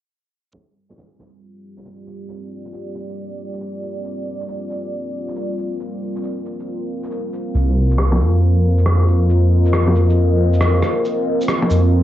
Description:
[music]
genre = future garage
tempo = 137 BPM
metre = 4/4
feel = swing 64% on 16ths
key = G minor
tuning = A4 = 440 Hz
[part]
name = deep dark ambient pad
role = sustained chords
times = 1.6-12.0 s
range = G3 to Eb5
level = -22 LUFS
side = left 1 dB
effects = chorus, built-in reverb, cassette tape
[part]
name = electronic shaker, rim click and bongos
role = drums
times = 0.5-11.8 s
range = none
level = -22 LUFS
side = equal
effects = cassette tape
[part]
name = dark detuned saw bass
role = bass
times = 7.5-12.0 s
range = C2 to F2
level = -14 LUFS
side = equal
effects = none
[sound]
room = light reverb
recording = home recording on cassette, low-pass filter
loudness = -16 LUFS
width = side -13 dB against mid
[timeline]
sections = 0.5-12.0 A section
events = fade-in on ambient pad 0.5-12.0; filter sweep 0.5-12.0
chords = 0.5 Gm7; 7.5 Cm

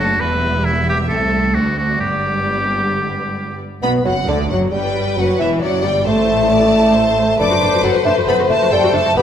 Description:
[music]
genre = classical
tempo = 135 BPM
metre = 4/4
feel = straight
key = G major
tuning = A4 = 440 Hz
[part]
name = rich studio violin section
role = melody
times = 0.0-9.2 s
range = G4 to A5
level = -26 LUFS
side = left 5 dB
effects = none
[part]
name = bright oboe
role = second line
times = 0.0-3.6 s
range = E4 to B4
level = -19 LUFS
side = equal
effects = none
[part]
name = rich studio violin section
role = second line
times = 0.0-9.2 s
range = B3 to D6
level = -24 LUFS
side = left 2 dB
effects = none
[part]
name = rich symphonic viola section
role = accompaniment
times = 0.0-9.2 s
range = D3 to C5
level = -22 LUFS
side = right 1 dB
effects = none
[part]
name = clear symphonic double bass section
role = bass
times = 0.0-9.2 s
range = E1 to D2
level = -24 LUFS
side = right 2 dB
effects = none
[part]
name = dark symphonic cello section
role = bass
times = 0.0-9.2 s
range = C2 to B2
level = -23 LUFS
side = right 2 dB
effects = none
[part]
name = mellow bassoon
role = accompaniment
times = 3.8-9.2 s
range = D3 to D4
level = -17 LUFS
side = equal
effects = none
[part]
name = dark French horn section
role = sustained chords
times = 3.8-9.2 s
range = D3 to C5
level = -20 LUFS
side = left 5 dB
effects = none
[sound]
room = wet scoring stage reverb, RT60 1.6 s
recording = none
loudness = -14 LUFS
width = side -9 dB against mid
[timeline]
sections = 0.0-3.8 A section; 3.8-9.2 A section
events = none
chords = 0.2 Em; 1.1 Am/C; 1.5 D7; 2.0 G; 5.6 Am7; 7.4 D7/F#

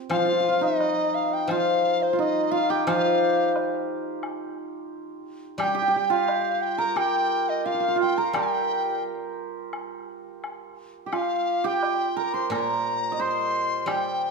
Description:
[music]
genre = chinese traditional, Chinese chamber ensemble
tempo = 87 BPM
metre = 4/4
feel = straight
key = unclear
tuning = A4 = 440 Hz
[part]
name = hammered dulcimer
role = second line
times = 0.0-14.3 s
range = C4 to Eb5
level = -26 LUFS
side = right 6 dB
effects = none
[part]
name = reedy large dizi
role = melody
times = 0.1-14.3 s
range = C5 to C6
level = -26 LUFS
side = left 4 dB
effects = none
[part]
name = guzheng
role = accompaniment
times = 0.1-14.3 s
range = Bb2 to G3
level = -29 LUFS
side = left 2 dB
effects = none
[part]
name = woodblock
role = percussion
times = 0.1-14.0 s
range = none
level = -35 LUFS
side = left 4 dB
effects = none
[sound]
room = moderate scoring stage reverb, RT60 1.8 s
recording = minimal, uncompressed stereo recording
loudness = -22 LUFS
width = side -4 dB against mid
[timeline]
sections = 0.1-14.3 A section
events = none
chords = none

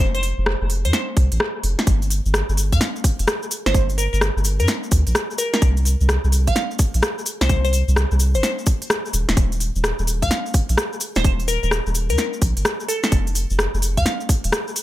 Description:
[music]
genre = UK garage, two-step garage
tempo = 128 BPM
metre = 4/4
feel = swing 65% on 16ths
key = unclear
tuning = A4 = 443 Hz
[part]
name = glassy wavetable pluck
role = melody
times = 0.0-14.1 s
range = A4 to F5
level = -27 LUFS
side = left 1 dB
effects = chorus, tape echo
[part]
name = soft dub sub bass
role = bass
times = 0.0-14.5 s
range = Eb1 to G2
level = -20 LUFS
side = equal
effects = none
[part]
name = garage drum kit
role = drums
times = 0.1-14.8 s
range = hi-hat, rim click, snare drum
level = -23 LUFS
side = equal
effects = none
[part]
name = electronic kick drum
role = drums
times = 1.2-14.4 s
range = none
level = -18 LUFS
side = equal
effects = none
[part]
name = cabasa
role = percussion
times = 1.9-14.8 s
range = none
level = -30 LUFS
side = left 3 dB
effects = none
[sound]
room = little or no reverb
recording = none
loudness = -17 LUFS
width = side -15 dB against mid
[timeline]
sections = 0.0-14.8 A section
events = none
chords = 0.0 N.C.; 5.4 C5; 9.1 N.C.

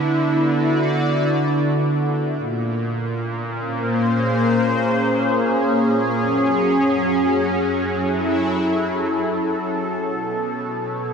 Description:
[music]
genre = ambient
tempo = free time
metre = none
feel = none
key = unclear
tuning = A4 = 436 Hz
[part]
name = warm analog pad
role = sustained chords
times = 0.0-11.1 s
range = A#2 to D5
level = -18 LUFS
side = equal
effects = chorus, shimmer reverb
[part]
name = rich chamber cello section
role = bass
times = 0.0-11.1 s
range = F#2 to D3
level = -33 LUFS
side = equal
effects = none
[sound]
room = wet cathedral reverb, RT60 4.8 s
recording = in a vast, echoing space, cassette tape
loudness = -18 LUFS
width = side -6 dB against mid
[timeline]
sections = 0.0-11.1 A section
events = fade-out 7.5-11.1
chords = 0.0 D6; 2.4 A#m7; 6.2 F#m7; 10.1 B7(no3)

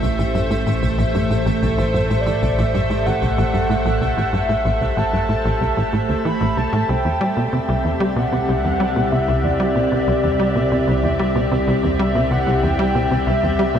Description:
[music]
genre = ambient, sequencer-driven space music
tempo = 94 BPM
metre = 4/4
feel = straight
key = C lydian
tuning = A4 = 441 Hz
[part]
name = evolving wavetable pad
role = sustained chords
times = 0.0-13.8 s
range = A3 to E5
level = -22 LUFS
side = equal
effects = chorus, built-in reverb
[part]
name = tight sequencer bass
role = riff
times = 0.0-13.8 s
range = A1 to G3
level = -20 LUFS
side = equal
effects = wide subtle chorus, analog delay
[part]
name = analog drone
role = bass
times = 0.0-13.8 s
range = A1 to C2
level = -24 LUFS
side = equal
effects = chorus
[part]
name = pulsing gated texture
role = texture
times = 0.0-13.8 s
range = C4 to E5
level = -30 LUFS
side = right 2 dB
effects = chorus, built-in reverb
[part]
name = breathy flute-like synth lead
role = melody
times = 1.8-13.8 s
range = C5 to B5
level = -23 LUFS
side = equal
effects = analog chorus, analog delay
[sound]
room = wet shimmer reverb, RT60 7.1 s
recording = dark, warm production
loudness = -16 LUFS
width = side -8 dB against mid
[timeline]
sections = 0.0-13.8 A section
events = filter sweep on analog synth bass 0.0-13.8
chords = 0.0 Am; 6.9 Cadd9

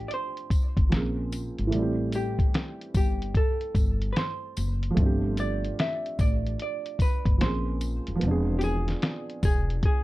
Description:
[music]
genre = lo-fi hip hop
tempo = 74 BPM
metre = 4/4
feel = swing 65% on 16ths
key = A minor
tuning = A4 = 440 Hz
[part]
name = vintage hollow-body jazz guitar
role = melody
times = 0.0-10.0 s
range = G4 to E5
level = -33 LUFS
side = equal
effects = low-pass filter
[part]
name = felt-muted upright piano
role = accompaniment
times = 0.0-10.0 s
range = E3 to Ab4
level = -31 LUFS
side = right 2 dB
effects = low-pass filter
[part]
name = upright bass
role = bass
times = 0.0-9.8 s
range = D#1 to Bb1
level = -29 LUFS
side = equal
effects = none
[part]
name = lo-fi sampler-style drum kit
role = drums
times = 0.1-10.0 s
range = hi-hat, kick drum, snare drum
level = -24 LUFS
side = equal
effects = vintage 12-bit sampler grit
[part]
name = tambourine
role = percussion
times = 0.5-9.7 s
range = none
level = -47 LUFS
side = left 6 dB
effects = none
[sound]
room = light reverb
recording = none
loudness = -24 LUFS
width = side -18 dB against mid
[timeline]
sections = 0.0-10.0 A section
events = none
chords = 0.0 G7sus4; 0.9 Bbm9; 1.7 Am7; 5.0 G7sus4; 7.4 Bbm9; 8.2 E7b9b13

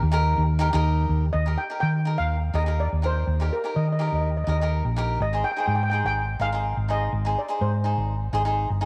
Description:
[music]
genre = calypso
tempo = 124 BPM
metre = 4/4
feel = swing 54% on 16ths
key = Eb major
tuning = A4 = 439 Hz
[part]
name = steel pan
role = melody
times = 0.0-8.5 s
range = Bb4 to G5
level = -32 LUFS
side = equal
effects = slapback echo
[part]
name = hollow-body short-scale fingered electric bass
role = bass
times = 0.0-8.9 s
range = G1 to Eb3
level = -26 LUFS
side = equal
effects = none
[part]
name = cavaquinho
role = accompaniment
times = 0.1-8.9 s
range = Eb4 to C5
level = -30 LUFS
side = equal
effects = none
[sound]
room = moderate plate reverb, RT60 3.2 s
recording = none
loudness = -24 LUFS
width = mono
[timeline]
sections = 0.0-1.3 A section; 1.3-8.9 B section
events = none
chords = 0.0 Eb; 5.2 Abmaj7

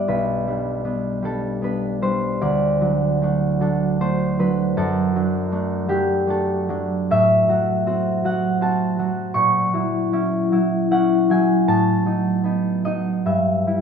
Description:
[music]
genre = classical, solo harp piece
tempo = 78 BPM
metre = 3/4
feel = uneven beats, rubato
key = unclear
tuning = A4 = 440 Hz
[part]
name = concert harp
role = solo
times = 0.0-13.8 s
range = B1 to C#6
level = -18 LUFS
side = equal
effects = none
[sound]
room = wet recital hall reverb, RT60 1.4 s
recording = none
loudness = -18 LUFS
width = side -6 dB against mid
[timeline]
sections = 0.0-13.8 A section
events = none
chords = 0.1 G/B; 2.4 D; 4.8 D/F#; 7.1 F#m7b5/A; 9.4 F#7/A#; 11.7 B7/A; 13.3 Em/G

